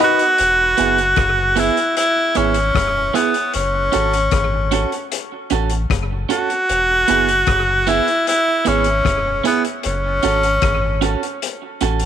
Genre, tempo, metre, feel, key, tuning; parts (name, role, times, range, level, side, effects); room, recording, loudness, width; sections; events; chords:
roots reggae; 76 BPM; 4/4; straight; E major; A4 = 441 Hz
edgy tenor saxophone; melody; 0.0-11.4 s; B3 to F#4; -16 LUFS; equal; dub echo
clean electric guitar; accompaniment; 0.0-12.0 s; B3 to B4; -23 LUFS; right 12 dB; dub echo
crunchy breakbeat drum kit; drums; 0.0-12.1 s; hi-hat, kick drum, rim click; -24 LUFS; left 5 dB; slapback echo
warm sub bass; bass; 0.4-12.1 s; E1 to A1; -22 LUFS; left 1 dB
light reverb; 1960s-style stereo; -15 LUFS; side -9 dB against mid
0.4-12.1 A section
0.4 E; 3.5 F#m; 6.7 E; 9.8 F#m